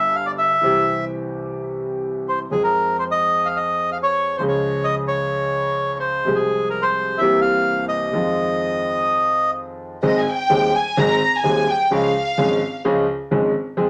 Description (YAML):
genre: tango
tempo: 128 BPM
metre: 4/4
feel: rubato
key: F minor, Ab major from 10.0 s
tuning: A4 = 440 Hz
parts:
  - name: bandoneon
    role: melody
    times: 0.0-9.5 s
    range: Ab4 to F5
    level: -21 LUFS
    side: equal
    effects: none
  - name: warm concert grand piano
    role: accompaniment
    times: 0.0-13.9 s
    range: Eb1 to Ab4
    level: -24 LUFS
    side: equal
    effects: none
  - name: dark studio violin section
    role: second line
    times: 10.0-12.8 s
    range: Eb5 to Bb5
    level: -22 LUFS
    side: equal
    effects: none
room: wet studio reverb, RT60 0.6 s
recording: none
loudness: -20 LUFS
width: mono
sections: 0.0-10.0 A section; 10.0-13.9 B section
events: violin section solo 10.0-13.9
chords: 0.0 G7; 0.6 C; 2.5 Fm; 4.4 Db; 6.3 Fm/C; 7.2 C7; 8.1 Fm7; 10.0 Ab; 11.9 Db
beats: 0.15 | 0.62 1.09 1.56 2.04 | 2.52 2.99 3.47 3.94 | 4.40 4.87 5.33 5.80 | 6.26 6.73 7.19 7.66 | 8.13 8.60 9.07 9.55 | 10.03 10.50 10.97 11.44 | 11.91 12.38 12.85 13.31 | 13.77